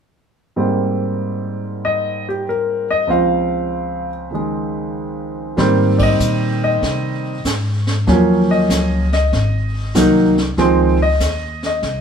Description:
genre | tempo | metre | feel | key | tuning
jazz piano trio | 96 BPM | 4/4 | swing 67% on 8ths | Ab major | A4 = 440 Hz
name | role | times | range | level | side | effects
warm concert grand piano | melody | 0.6-12.0 s | Db2 to F5 | -16 LUFS | equal | none
upright bass | bass | 5.6-12.0 s | Ab1 to C3 | -19 LUFS | equal | none
vintage brush drum kit | drums | 5.6-12.0 s | brushed snare drum, hi-hat, kick drum, ride cymbal, snare drum | -25 LUFS | right 1 dB | none
room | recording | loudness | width
moderate stone room reverb, RT60 1.0 s | band playing live in one room | -15 LUFS | side -7 dB against mid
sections
0.6-5.6 A section; 5.6-12.0 B section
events
band accent 5.9-6.2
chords
0.6 Abmaj9; 3.1 Dbmaj7; 5.6 Abmaj7; 8.1 Ebm7; 9.3 Ab7; 10.6 Dbmaj9

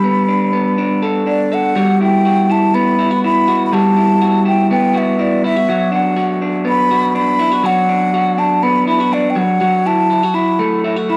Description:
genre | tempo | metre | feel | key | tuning
indie pop | 122 BPM | 4/4 | straight | E minor | A4 = 440 Hz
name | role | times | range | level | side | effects
mellow hollow concert flute | melody | 0.0-11.2 s | D5 to B5 | -18 LUFS | equal | cassette tape
electric guitar through a small old amp | arpeggios | 0.0-11.2 s | F#3 to A4 | -17 LUFS | equal | none
room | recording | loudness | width
moderate studio reverb, RT60 0.6 s | home recording on cassette | -15 LUFS | mono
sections
0.0-1.8 A section; 1.8-11.2 B section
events
none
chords
0.0 Gadd9; 1.8 Emadd9; 5.7 Bm; 9.4 F#m7

